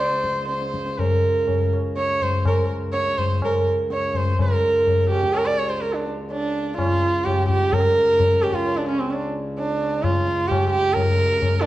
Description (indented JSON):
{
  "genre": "indian classical, Hindustani",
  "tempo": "126 BPM",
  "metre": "7/4",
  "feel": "uneven beats",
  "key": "C# raga marwa",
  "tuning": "A4 = 440 Hz",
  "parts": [
    { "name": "rich sarangi", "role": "melody", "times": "0.0-11.7 s", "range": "B#3 to D5", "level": "-20 LUFS", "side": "right 2 dB", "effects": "slapback echo" },
    { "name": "pedal harmonium", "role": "drone", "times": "0.0-11.7 s", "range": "C#2 to C#3", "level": "-31 LUFS", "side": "left 1 dB", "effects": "none" },
    { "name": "tabla", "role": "percussion", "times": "0.1-11.7 s", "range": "none", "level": "-23 LUFS", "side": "left 2 dB", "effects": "none" }
  ],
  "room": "wet recital hall reverb, RT60 1.8 s",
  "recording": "dark, warm production",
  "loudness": "-19 LUFS",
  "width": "side -15 dB against mid",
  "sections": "0.0-4.4 A section; 4.4-11.7 B section",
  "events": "speeding up 0.0-11.7",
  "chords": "none"
}